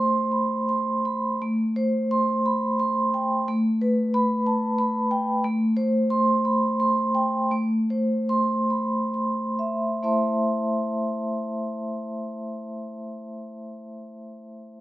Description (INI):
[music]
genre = classical, contemporary piece for solo vibraphone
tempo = 43-62 BPM (dotted quarters)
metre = 6/8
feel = rubato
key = A minor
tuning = A4 = 444 Hz
[part]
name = vibraphone with medium hard mallets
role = solo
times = 0.0-14.8 s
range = A3 to C6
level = -22 LUFS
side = equal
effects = none
[sound]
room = little or no reverb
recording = close, detailed microphones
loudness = -22 LUFS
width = side -16 dB against mid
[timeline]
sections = 0.0-1.4 A section; 1.4-10.0 B section; 10.0-14.8 C section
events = slowing down 4.5-10.0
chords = 0.0 Amadd9; 1.4 Am7; 3.5 Gadd9/A; 5.4 Am9; 7.5 C6/A; 10.0 Am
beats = 0.32 | 1.41 2.45 | 3.47 4.46 | 5.44 6.45 | 7.51 8.70 | 10.04 11.31 | 12.59 13.86